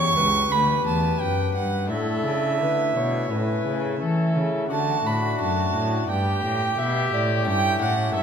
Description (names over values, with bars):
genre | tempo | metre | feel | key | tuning
classical, baroque-style sonata movement with continuo | 87 BPM | 4/4 | straight | unclear | A4 = 440 Hz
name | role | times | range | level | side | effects
dark violin | melody | 0.0-8.2 s | F#4 to C#5 | -29 LUFS | left 9 dB | none
warm violin | second line | 0.0-8.2 s | D5 to C#6 | -25 LUFS | right 5 dB | none
pipe organ, cornet | accompaniment | 0.0-8.2 s | C#2 to A4 | -27 LUFS | left 1 dB | none
rich cello | bass | 0.0-8.2 s | C#2 to E3 | -26 LUFS | equal | none
room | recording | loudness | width
wet recital hall reverb, RT60 1.6 s | none | -20 LUFS | side -7 dB against mid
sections
0.0-8.2 A section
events
none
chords
0.0 G; 1.9 Asus4; 3.3 A; 4.7 D; 6.1 G; 7.5 A7/G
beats
0.52 1.21 | 1.91 2.61 3.31 4.01 | 4.71 5.40 6.09 6.78 | 7.46 8.14